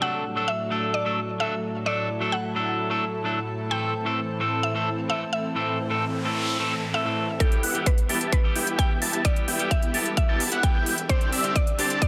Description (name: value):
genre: EDM, festival progressive house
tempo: 130 BPM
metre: 4/4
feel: straight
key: E minor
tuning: A4 = 441 Hz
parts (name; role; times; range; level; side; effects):
- mallet-like synth pluck; melody; 0.0-12.1 s; A4 to G5; -33 LUFS; equal; chorus, cassette tape, dub echo
- clean electric guitar; accompaniment; 0.0-12.1 s; A2 to A4; -31 LUFS; equal; sidechain pumping
- lush unison pad; sustained chords; 0.0-12.1 s; A2 to A4; -33 LUFS; equal; chorus, sidechain pumping
- noise sweep; sound effects; 5.8-7.4 s; none; -35 LUFS; equal; none
- unison lead; arpeggios; 7.4-12.0 s; E6 to A6; -32 LUFS; equal; cassette tape, sidechain pumping, dub echo
- supersaw chords; riff; 7.4-12.0 s; B3 to A5; -32 LUFS; equal; sidechain pumping, low-pass filter
- detuned saw bass; bass; 7.4-12.0 s; E1 to C2; -42 LUFS; equal; none
- electronic hi-hat; drums; 7.4-12.1 s; none; -32 LUFS; equal; low-pass filter on hats, low-pass filter on room
- electronic kick drum; drums; 7.4-12.1 s; none; -25 LUFS; equal; none
room: light reverb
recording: dense, heavily limited modern master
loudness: -25 LUFS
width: mono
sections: 0.0-7.4 A section; 7.4-12.1 B section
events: noise sweep 5.8-7.4; build-up 7.4-12.1; filter sweep on supersaw synth 7.4-12.1; filter sweep on analog synth lead 7.4-12.1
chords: 0.0 D; 3.7 Am; 7.4 Em; 11.1 Csus2